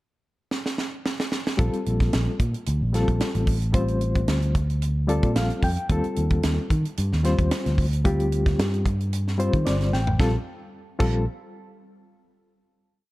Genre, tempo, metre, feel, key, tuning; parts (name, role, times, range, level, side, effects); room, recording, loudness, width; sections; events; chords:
electric jazz fusion; 112 BPM; 4/4; swing 53% on 16ths; Bb major; A4 = 440 Hz
tight funk drum kit; drums; 0.5-11.1 s; crash cymbal, hi-hat, kick drum, snare drum, toms; -26 LUFS; equal
bright reed electric piano; accompaniment; 1.6-11.2 s; G3 to G5; -27 LUFS; left 2 dB; fast tremolo
fingered electric bass; bass; 1.6-11.3 s; G1 to Eb3; -23 LUFS; equal
little or no reverb; dark, warm production; -21 LUFS; side -18 dB against mid
0.0-1.6 pickup bar; 1.6-10.2 groove; 10.2-12.3 final chord
drum fill 0.5-1.6, 9.9; reed electric piano fill 4.8-5.9, 9.4-10.2
0.0 N.C.; 1.6 Bbmaj9; 5.9 Ebmaj9; 10.2 Bbsus2